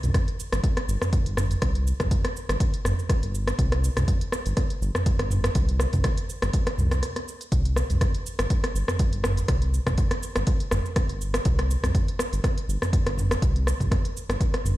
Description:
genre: afro house.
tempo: 122 BPM.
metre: 4/4.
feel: swing 55% on 16ths.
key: unclear.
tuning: A4 = 440 Hz.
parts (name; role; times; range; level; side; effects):
round analog bass; bass; 0.0-14.8 s; G1 to C2; -25 LUFS; equal; sidechain pumping.
deep house drum kit; drums; 0.0-14.8 s; hi-hat, rim click, shaker, toms; -27 LUFS; equal; none.
electronic kick drum; drums; 0.1-14.5 s; none; -24 LUFS; equal; none.
room: little or no reverb.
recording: played on a big sound system in a bare room, stone room reverb.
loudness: -22 LUFS.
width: side -16 dB against mid.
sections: 0.0-14.8 A section.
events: break 7.0-7.5; drum fill 7.0-7.5.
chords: none.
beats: 0.14 0.63 1.13 | 1.62 2.11 2.60 3.09 | 3.58 4.08 4.57 5.06 | 5.55 6.04 6.54 7.03 | 7.52 8.01 8.50 8.99 | 9.49 9.98 10.47 10.96 | 11.45 11.95 12.44 12.93 | 13.42 13.91 14.40.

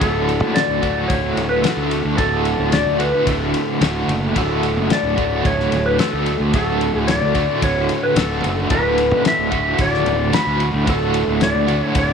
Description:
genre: psychedelic rock.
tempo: 110 BPM.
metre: 4/4.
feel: straight.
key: D major.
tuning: A4 = 437 Hz.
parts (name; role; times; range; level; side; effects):
clean lap steel guitar; melody; 0.0-12.1 s; A4 to B5; -20 LUFS; left 1 dB; slapback echo.
overdriven electric guitar; riff; 0.0-12.1 s; D2 to F#4; -20 LUFS; right 1 dB; tremolo.
fuzz fingered electric bass; bass; 0.0-12.1 s; D1 to D2; -23 LUFS; right 1 dB; overdrive.
cloth-damped thuddy drum kit; drums; 0.0-12.1 s; kick drum, ride cymbal, snare drum; -24 LUFS; left 3 dB; none.
room: small room ambience.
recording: 1960s-style stereo.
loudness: -16 LUFS.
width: side -6 dB against mid.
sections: 0.0-12.1 A section.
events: none.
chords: 0.0 D.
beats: | 0.01 0.56 1.10 1.64 | 2.18 2.73 3.27 3.81 | 4.36 4.90 5.44 5.99 | 6.53 7.08 7.62 8.16 | 8.71 9.25 9.79 10.33 | 10.87 11.41 11.96.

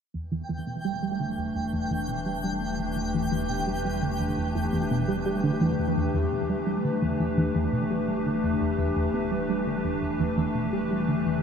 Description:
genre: ambient, sequencer-driven space music.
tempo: 85 BPM.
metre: 4/4.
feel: straight.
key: E minor.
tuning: A4 = 442 Hz.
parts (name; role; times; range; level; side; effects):
evolving wavetable pad; sustained chords; 0.7-11.4 s; E3 to B4; -28 LUFS; left 2 dB; chorus, built-in reverb.
tight sequenced synth; riff; 0.1-11.4 s; E2 to G3; -28 LUFS; right 1 dB; chorus, phaser, tape echo.
fat analog bass; bass; 0.1-11.4 s; E1; -40 LUFS; right 1 dB; none.
twinkling granular texture; texture; 0.5-5.8 s; G5; -35 LUFS; right 2 dB; built-in reverb.
concert harp; arpeggios; 5.8-11.4 s; D4 to E5; -51 LUFS; right 2 dB; none.
room: wet cathedral reverb, RT60 4.8 s.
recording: in a vast, echoing space.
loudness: -25 LUFS.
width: side -7 dB against mid.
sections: 0.1-5.8 A section; 5.8-11.4 B section.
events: fade-in on analog synth bass 0.1-5.8; filter sweep on synth arpeggio sound 5.8-11.4.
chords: 0.1 Em7.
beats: | 0.14 0.85 1.55 2.26 | 2.97 3.67 4.38 5.08 | 5.79 6.50 7.20 7.91 | 8.61 9.32 10.03 10.73.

